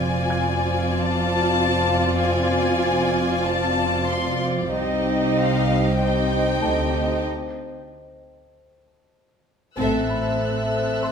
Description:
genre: cinematic, suspense film score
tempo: 95 BPM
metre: 4/4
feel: straight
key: unclear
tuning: A4 = 439 Hz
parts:
  - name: warm chamber violin section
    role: melody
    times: 0.0-11.1 s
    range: E5 to C6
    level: -27 LUFS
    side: left 4 dB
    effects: none
  - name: warm chamber violin section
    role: second line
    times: 0.0-11.1 s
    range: F4 to Eb5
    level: -26 LUFS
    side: equal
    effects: none
  - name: warm chamber viola section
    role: accompaniment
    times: 0.0-11.1 s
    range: C4 to F4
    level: -25 LUFS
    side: left 1 dB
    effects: none
  - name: glass harmonica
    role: sustained chords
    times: 0.0-11.1 s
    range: A4 to G5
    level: -28 LUFS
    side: left 1 dB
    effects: none
  - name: warm chamber cello section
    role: bass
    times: 0.0-11.1 s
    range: C2 to A2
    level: -28 LUFS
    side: right 2 dB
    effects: none
  - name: warm chamber double bass section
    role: bass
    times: 0.0-11.1 s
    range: F1 to D2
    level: -28 LUFS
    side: right 2 dB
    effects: none
  - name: clear grand piano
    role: texture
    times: 0.0-11.1 s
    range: A4 to G#6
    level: -35 LUFS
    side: equal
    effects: none
  - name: warm chamber violin section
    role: texture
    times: 9.8-11.1 s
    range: E6 to G6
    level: -34 LUFS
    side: right 2 dB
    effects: none
room: moderate scoring stage reverb, RT60 1.6 s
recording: minimal, uncompressed stereo recording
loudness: -19 LUFS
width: side -6 dB against mid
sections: 0.0-9.8 A section; 9.8-11.1 B section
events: break 7.3-9.8; band accent 9.8-10.4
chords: 0.0 F6; 4.7 Cm; 7.3 N.C.; 9.8 Am

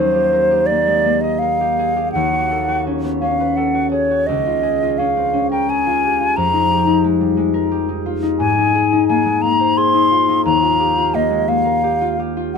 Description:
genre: classical, impressionist duo for flute and harp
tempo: 86 BPM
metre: 3/4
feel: uneven beats, rubato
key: Eb major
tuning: A4 = 444 Hz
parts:
  - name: hollow concert flute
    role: melody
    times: 0.0-12.6 s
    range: C5 to C6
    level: -16 LUFS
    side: equal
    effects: none
  - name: concert harp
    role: accompaniment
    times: 0.0-12.6 s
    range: Db2 to D#5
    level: -18 LUFS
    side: left 2 dB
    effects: none
room: little or no reverb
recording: close, detailed microphones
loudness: -14 LUFS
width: side -5 dB against mid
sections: 0.0-12.6 A section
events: none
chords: 0.0 Ebadd9; 2.1 B9/D#; 4.3 Db69; 6.4 Fm11; 8.4 Abadd9; 10.5 Ebadd9

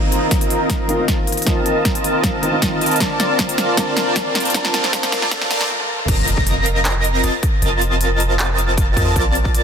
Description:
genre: future bass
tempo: 156 BPM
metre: 4/4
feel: half-time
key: unclear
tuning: A4 = 440 Hz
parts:
  - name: felt-muted upright piano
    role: accompaniment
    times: 0.0-6.1 s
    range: D3 to A5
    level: -25 LUFS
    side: equal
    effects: sidechain pumping, ping-pong delay
  - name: supersaw chords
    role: riff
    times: 0.0-9.6 s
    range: C4 to Bb5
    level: -19 LUFS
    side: equal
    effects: lush chorus, sidechain pumping, low-pass filter, ping-pong delay
  - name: long sustained 808-style bass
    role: bass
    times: 0.0-9.6 s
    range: F1 to F2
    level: -21 LUFS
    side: equal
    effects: tube saturation, sidechain pumping, high-pass filter
  - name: riser, swell and impact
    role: sound effects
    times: 0.0-7.6 s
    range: none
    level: -32 LUFS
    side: equal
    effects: none
  - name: big-room dance drum kit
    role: drums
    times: 0.1-9.6 s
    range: crash cymbal, handclaps, hi-hat, snare drum, toms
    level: -22 LUFS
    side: equal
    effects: overdrive
  - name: electronic kick drum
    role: drums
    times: 0.3-9.5 s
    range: none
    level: -20 LUFS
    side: equal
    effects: overdrive
  - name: airy dreamy lead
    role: arpeggios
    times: 6.1-9.6 s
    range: A6 to Bb6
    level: -23 LUFS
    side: equal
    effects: chorus, sidechain pumping
room: light reverb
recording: dense, heavily limited modern master, high-pass filter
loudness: -15 LUFS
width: side -7 dB against mid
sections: 0.0-6.1 A section; 6.1-9.6 B section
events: build-up 0.0-6.1; drum fill 0.0-5.7, 5.7-6.1; filter sweep on supersaw synth 0.0-6.1; filter sweep 0.0-6.1; swell 5.3-6.1; stop 5.7-6.1; drop 6.1-9.6; impact 6.1-7.6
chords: 0.0 F7sus4; 3.0 Bbmaj9; 6.1 F7sus4

